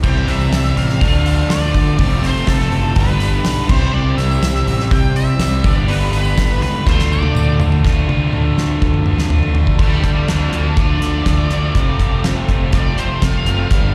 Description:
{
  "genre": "classic rock",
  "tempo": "123 BPM",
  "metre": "4/4",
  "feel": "straight",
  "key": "D dorian",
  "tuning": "A4 = 444 Hz",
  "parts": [
    { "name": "octave-fuzz lead guitar", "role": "melody", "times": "0.0-13.9 s", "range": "A4 to G5", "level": "-26 LUFS", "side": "equal", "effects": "wah, distortion, slapback echo" },
    { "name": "tonewheel organ", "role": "sustained chords", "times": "0.0-13.9 s", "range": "G3 to D5", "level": "-33 LUFS", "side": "equal", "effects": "none" },
    { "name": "biting overdriven guitar", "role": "riff", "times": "0.0-13.9 s", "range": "F2 to E4", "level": "-25 LUFS", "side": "equal", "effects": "slapback echo" },
    { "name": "cranked stack guitar", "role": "riff", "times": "0.0-13.9 s", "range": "F2 to G4", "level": "-26 LUFS", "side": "equal", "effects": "overdrive, slapback echo" },
    { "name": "fuzz fingered electric bass", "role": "bass", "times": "0.0-13.9 s", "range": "F1 to D3", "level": "-20 LUFS", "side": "equal", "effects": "overdrive" },
    { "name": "damped 70s drum kit", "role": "drums", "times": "0.0-13.8 s", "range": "crash cymbal, hi-hat, kick drum, snare drum, toms", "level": "-20 LUFS", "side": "equal", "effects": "none" },
    { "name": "tambourine", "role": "percussion", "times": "0.3-7.8 s", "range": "none", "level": "-41 LUFS", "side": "equal", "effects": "none" }
  ],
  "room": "little or no reverb",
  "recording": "live gig heard through the venue's PA, recital hall reverb",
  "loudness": "-16 LUFS",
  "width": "mono",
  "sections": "0.0-7.8 A section; 7.8-9.8 B section; 9.8-13.9 C section",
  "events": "drum fill 6.9-7.8, 7.8-9.8; lead electric guitar solo 9.8-13.9",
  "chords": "0.0 C; 1.0 Dm; 2.0 F; 3.0 G6; 3.7 C; 5.7 G6; 6.9 Dm; 11.8 F",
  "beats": "| 0.04 0.53 1.02 1.50 | 1.99 2.48 2.97 3.46 | 3.94 4.43 4.92 5.41 | 5.89 6.38 6.87 7.36 | 7.85 8.33 8.82 9.31 | 9.80 10.29 10.78 11.27 | 11.76 12.25 12.74 13.23 | 13.72"
}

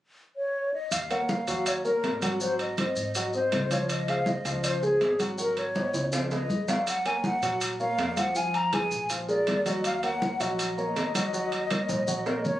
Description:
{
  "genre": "Afro-Cuban jazz",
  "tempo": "161 BPM",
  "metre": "4/4",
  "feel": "straight",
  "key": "Eb minor",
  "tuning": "A4 = 440 Hz",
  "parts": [
    { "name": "breathy mellow silver concert flute", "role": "melody", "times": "0.4-12.6 s", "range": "Ab4 to Bb5", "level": "-29 LUFS", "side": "left 1 dB", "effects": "plate reverb" },
    { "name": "upright bass", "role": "bass", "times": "0.9-12.6 s", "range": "Ab1 to Bb2", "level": "-36 LUFS", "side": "equal", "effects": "none" },
    { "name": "congas", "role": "percussion", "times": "0.9-12.5 s", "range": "none", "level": "-33 LUFS", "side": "equal", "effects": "none" },
    { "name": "maracas", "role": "percussion", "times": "0.9-12.6 s", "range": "none", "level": "-36 LUFS", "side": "left 1 dB", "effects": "none" },
    { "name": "timbales", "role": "percussion", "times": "0.9-12.3 s", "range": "none", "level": "-34 LUFS", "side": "right 3 dB", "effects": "none" },
    { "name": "warm concert grand piano", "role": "accompaniment", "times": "1.1-12.6 s", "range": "F3 to Gb5", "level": "-31 LUFS", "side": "equal", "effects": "none" }
  ],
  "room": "moderate studio ambience, RT60 0.5 s",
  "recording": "recorded on a phone in the room, studio ambience",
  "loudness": "-25 LUFS",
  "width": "side -14 dB against mid",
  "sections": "0.9-12.6 A section",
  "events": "drum fill 5.8-6.9, 11.7-12.6",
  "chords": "0.0 N.C.; 0.9 Ebm9; 2.4 Ab7; 3.9 Dbmaj7; 5.4 Abm7; 6.1 Db9; 6.9 Gbmaj7; 8.4 Fdim; 9.1 Bb7; 9.8 Ebm7",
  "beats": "0.17 0.55 | 0.92 1.29 1.66 2.03 | 2.41 2.78 3.15 3.52 | 3.89 4.26 4.64 5.01 | 5.38 5.75 6.12 6.49 | 6.87 7.24 7.61 7.98 | 8.35 8.73 9.10 9.47 | 9.84 10.21 10.59 10.96 | 11.33 11.71 12.08 12.45"
}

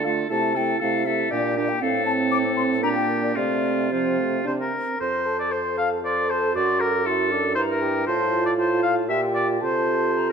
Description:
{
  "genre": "quick classical-period movement for wind quintet",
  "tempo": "107-120 BPM",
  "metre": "3/4",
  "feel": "rubato",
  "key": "F major",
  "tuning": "A4 = 440 Hz",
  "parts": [
    { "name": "hollow concert flute", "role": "melody", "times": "0.0-10.3 s", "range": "C5 to D6", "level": "-29 LUFS", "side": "left 10 dB", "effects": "none" },
    { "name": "warm oboe", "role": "second line", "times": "0.0-10.3 s", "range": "F4 to F5", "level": "-24 LUFS", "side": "left 1 dB", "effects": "none" },
    { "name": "warm French horn", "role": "accompaniment", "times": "0.0-10.3 s", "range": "F3 to A4", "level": "-28 LUFS", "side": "left 1 dB", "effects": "none" },
    { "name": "warm clarinet", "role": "accompaniment", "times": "0.0-10.3 s", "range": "C4 to C5", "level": "-27 LUFS", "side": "right 10 dB", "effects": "none" },
    { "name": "mellow bassoon", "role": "bass", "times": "0.0-10.3 s", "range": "F2 to D3", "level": "-28 LUFS", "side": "right 3 dB", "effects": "none" }
  ],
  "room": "moderate scoring stage reverb, RT60 1.7 s",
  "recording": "none",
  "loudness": "-20 LUFS",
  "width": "side -6 dB against mid",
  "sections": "0.0-5.0 A section; 5.0-10.3 B section",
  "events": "none",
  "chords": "0.3 Am/C; 1.3 Gm/Bb; 1.8 Am; 2.8 Gm/Bb; 3.4 F/C; 4.5 Bbadd9/C; 5.0 F; 6.6 D7/F#; 7.6 Gm; 8.1 F/A; 9.1 Gm7/Bb; 9.6 F/C",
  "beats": "| 0.31 0.81 1.32 | 1.82 2.32 2.83 | 3.36 3.92 4.46 | 5.00 5.52 6.04 | 6.56 7.07 7.57 | 8.08 8.59 9.10 | 9.62 10.15"
}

